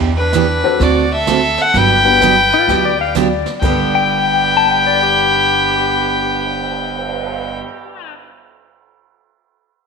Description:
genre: country, western swing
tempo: 128 BPM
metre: 4/4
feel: swing 65% on 8ths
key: G major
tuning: A4 = 440 Hz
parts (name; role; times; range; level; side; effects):
- picked steel-string acoustic guitar; accompaniment; 0.0-7.7 s; G2 to A4; -20 LUFS; right 10 dB; none
- upright bass; bass; 0.0-7.6 s; G1 to E2; -22 LUFS; equal; none
- clear fiddle; melody; 0.2-7.6 s; B4 to G5; -15 LUFS; left 3 dB; none
- clear fiddle; second line; 0.2-7.6 s; B3 to B4; -22 LUFS; right 9 dB; none
- jazz brush drum kit; drums; 0.3-7.3 s; brushed snare drum, crash cymbal, cymbal swell, hi-hat, kick drum, snare drum; -26 LUFS; right 4 dB; none
- warm upright piano; accompaniment; 0.6-7.6 s; G2 to C5; -23 LUFS; left 11 dB; none
- clean lap steel guitar; second line; 2.5-8.1 s; F4 to A5; -19 LUFS; left 11 dB; none
room: moderate echo chamber reverb, RT60 1.4 s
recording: 1960s-style stereo with parts hard left and right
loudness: -12 LUFS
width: side -5 dB against mid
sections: 0.0-3.6 A section; 3.6-7.4 B section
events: none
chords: 0.0 Em9; 0.8 D7; 1.7 Gmaj7; 3.6 G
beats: 0.33 0.80 1.27 | 1.74 2.21 2.68 3.15 | 3.62 4.08 4.55 5.02 | 5.49 5.96 6.43 6.90

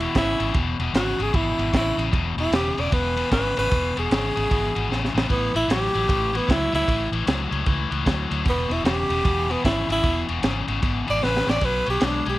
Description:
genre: electric blues shuffle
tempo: 152 BPM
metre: 4/4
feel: swing 64% on 8ths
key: E mixolydian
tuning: A4 = 440 Hz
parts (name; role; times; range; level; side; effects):
- warm tenor saxophone; melody; 0.0-12.4 s; B3 to D5; -24 LUFS; right 1 dB; none
- biting overdriven guitar; riff; 0.0-12.4 s; E2 to G#3; -26 LUFS; left 4 dB; spring reverb
- vintage muted fingered electric bass; bass; 0.0-12.4 s; E1 to D2; -28 LUFS; right 1 dB; none
- crunchy breakbeat drum kit; drums; 0.0-12.3 s; kick drum, ride cymbal, snare drum; -25 LUFS; right 1 dB; none
room: little or no reverb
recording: none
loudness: -20 LUFS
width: side -16 dB against mid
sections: 0.0-12.4 A section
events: tenor saxophone solo 0.0-12.4; drum fill 4.9-5.3, 11.2-11.6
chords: 0.0 E; 5.3 A7; 8.5 E; 11.6 B5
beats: 0.15 | 0.54 0.94 1.33 1.73 | 2.12 2.52 2.92 3.31 | 3.71 4.10 4.50 4.89 | 5.29 5.68 6.08 6.48 | 6.87 7.27 7.66 8.06 | 8.45 8.85 9.24 9.64 | 10.03 10.43 10.82 11.22 | 11.61 12.01

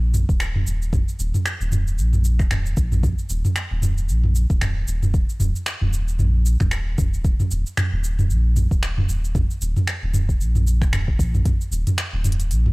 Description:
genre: organic downtempo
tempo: 114 BPM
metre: 4/4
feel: swing 58% on 16ths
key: unclear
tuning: A4 = 436 Hz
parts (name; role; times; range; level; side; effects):
- round analog bass; bass; 0.0-12.7 s; Eb1 to Bb1; -21 LUFS; equal; sidechain pumping
- organic electronic drum kit; drums; 0.1-12.7 s; finger snaps, hi-hat, shaker, toms; -23 LUFS; right 1 dB; none
- electronic kick drum; drums; 0.3-11.6 s; none; -21 LUFS; equal; none
room: little or no reverb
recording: dry, gritty hardware recording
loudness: -18 LUFS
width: side -24 dB against mid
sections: 0.0-11.5 A section; 11.5-12.7 B section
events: none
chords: none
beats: 0.40 | 0.93 1.46 1.98 2.51 | 3.03 3.56 4.09 4.61 | 5.14 5.67 6.19 6.72 | 7.25 7.77 8.30 8.82 | 9.35 9.88 10.40 10.93 | 11.46 11.98 12.51

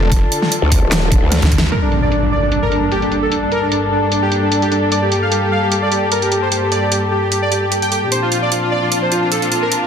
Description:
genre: heavy wobble dubstep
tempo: 150 BPM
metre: 4/4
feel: half-time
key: G minor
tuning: A4 = 440 Hz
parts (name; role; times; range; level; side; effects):
- warm chamber string section; sustained chords; 0.0-9.9 s; G2 to A4; -19 LUFS; left 2 dB; sidechain pumping, low-pass filter
- snarling distorted saw bass; bass; 0.0-1.7 s; F1 to D2; -15 LUFS; equal; distortion, overdrive
- dubstep drum kit; drums; 0.1-9.8 s; handclaps, hi-hat, snare drum; -20 LUFS; right 1 dB; overdrive, low-pass filter on hats, low-pass filter on snare, low-pass filter on room
- electronic kick drum; drums; 0.1-1.6 s; none; -14 LUFS; equal; overdrive
- growl bass; bass; 0.6-1.4 s; Eb1 to D2; -15 LUFS; equal; chorus, overdrive
- soft supersaw; melody; 1.7-9.9 s; D4 to G5; -17 LUFS; right 1 dB; tape echo
- impact; sound effects; 1.7-3.3 s; none; -20 LUFS; equal; none
room: moderate lush hall reverb, RT60 2.0 s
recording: dense, heavily limited modern master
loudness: -13 LUFS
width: side -7 dB against mid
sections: 0.0-1.7 A section; 1.7-9.9 B section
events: drop 0.0-1.7; drum fill 1.3-1.7; impact 1.7-3.3; filter sweep on string section 1.7-9.9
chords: 0.0 Dm; 1.7 Gmadd9; 8.1 Bbadd9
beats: | 0.12 0.52 0.92 1.32 | 1.72 2.12 2.52 2.92 | 3.32 3.72 4.12 4.52 | 4.92 5.32 5.72 6.12 | 6.52 6.92 7.32 7.72 | 8.12 8.52 8.92 9.32 | 9.72

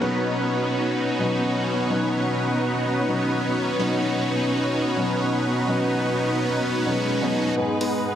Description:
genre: EDM, festival progressive house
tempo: 127 BPM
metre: 4/4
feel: straight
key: B major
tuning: A4 = 440 Hz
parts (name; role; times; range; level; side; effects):
- dark baby grand piano; accompaniment; 0.0-8.2 s; G#2 to G#4; -26 LUFS; left 2 dB; vintage 12-bit sampler grit, dub echo
- bright studio string section; sustained chords; 0.0-8.2 s; G#2 to C#5; -30 LUFS; equal; low-pass filter
- supersaw chords; riff; 0.0-8.1 s; G#3 to B4; -23 LUFS; right 1 dB; low-pass filter, dub echo
- swell and riser; sound effects; 6.8-8.2 s; none; -34 LUFS; right 2 dB; none
- electronic hi-hat; drums; 7.8-7.9 s; none; -33 LUFS; right 1 dB; high-pass filter on hats
room: moderate lush hall reverb, RT60 2.1 s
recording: heavily compressed radio sound, multiband compression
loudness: -21 LUFS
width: side -10 dB against mid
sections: 0.0-7.6 A section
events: swell 6.8-7.6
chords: 0.0 Badd9; 7.6 G#m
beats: | 0.01 0.49 0.96 1.43 | 1.90 2.38 2.85 3.32 | 3.79 4.27 4.74 5.21 | 5.68 6.16 6.63 7.10 | 7.57 8.05

